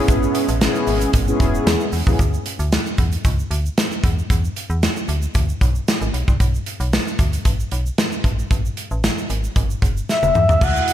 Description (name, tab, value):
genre	early-eighties boogie funk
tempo	114 BPM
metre	4/4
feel	straight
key	unclear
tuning	A4 = 439 Hz
part	mellow synth brass	accompaniment	0.0-2.2 s	B3 to G#4	-21 LUFS	left 2 dB	chorus
part	chorused pulse-width pad	sustained chords	0.0-2.2, 10.6-10.9 s	B2 to F#4	-28 LUFS	right 2 dB	none
part	metallic FM bass	bass	0.1-10.8 s	E1 to E2	-21 LUFS	equal	none
part	modern studio drum kit	drums	0.1-10.9 s	crash cymbal, hi-hat, kick drum, snare drum, toms	-19 LUFS	equal	none
part	egg shaker	percussion	0.1-10.9 s	none	-38 LUFS	right 8 dB	none
part	expressive synth lead	melody	10.1-10.9 s	E5 to F#5	-16 LUFS	left 2 dB	chorus, slapback echo
room	light reverb, small room ambience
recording	none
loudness	-17 LUFS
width	side -11 dB against mid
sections	0.0-2.2 A section; 2.2-10.6 B section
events	drum fill 10.1-10.6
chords	0.0 Amaj9; 2.2 Dsus2; 4.0 E7(no3); 6.1 N.C.; 8.2 A5